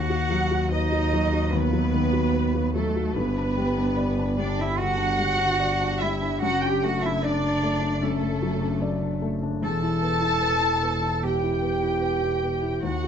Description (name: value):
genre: neoclassical piano and strings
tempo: 74 BPM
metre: 4/4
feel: rubato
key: E minor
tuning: A4 = 440 Hz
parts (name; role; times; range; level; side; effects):
- muted chamber violin section; melody; 0.0-13.1 s; A4 to A5; -28 LUFS; left 1 dB; none
- muted cello; second line; 0.0-13.1 s; A3 to A4; -27 LUFS; right 5 dB; none
- felt-muted upright piano; accompaniment; 0.0-13.1 s; D#2 to D5; -28 LUFS; left 3 dB; none
- muted double bass; bass; 0.0-13.1 s; E1 to D#2; -28 LUFS; left 1 dB; none
room: moderate studio reverb, RT60 0.6 s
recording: nothing above 7.7 kHz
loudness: -22 LUFS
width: side -8 dB against mid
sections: 0.0-13.1 A section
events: none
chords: 0.0 B/D#; 3.1 G; 6.4 D/F#; 9.6 Em